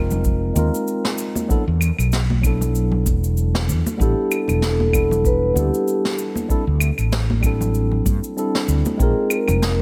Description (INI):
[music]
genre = sunset chillout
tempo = 96 BPM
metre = 4/4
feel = swing 56% on 16ths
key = unclear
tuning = A4 = 439 Hz
[part]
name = mellow tine electric piano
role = accompaniment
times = 0.0-9.8 s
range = F#3 to Bb4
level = -27 LUFS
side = equal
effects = low-pass filter, delay
[part]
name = fretless electric bass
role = bass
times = 0.0-9.8 s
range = E1 to G2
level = -22 LUFS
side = equal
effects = none
[part]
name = cabasa, snare drum and claves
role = drums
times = 0.1-9.8 s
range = none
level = -29 LUFS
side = equal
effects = none
[part]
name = congas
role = percussion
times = 0.1-9.8 s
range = none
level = -31 LUFS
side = equal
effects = none
[part]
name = electronic kick drum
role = drums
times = 0.2-9.1 s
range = none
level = -23 LUFS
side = equal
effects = overdrive
[part]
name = vibraphone with soft mallets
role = melody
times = 4.0-9.8 s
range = G4 to B4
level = -25 LUFS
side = equal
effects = delay
[sound]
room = light reverb, small room ambience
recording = none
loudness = -20 LUFS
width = mono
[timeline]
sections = 0.0-9.8 A section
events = none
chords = 0.0 Bb9sus4; 1.5 E9sus4; 4.0 A9sus4; 6.5 D9sus4; 9.0 Bb9sus4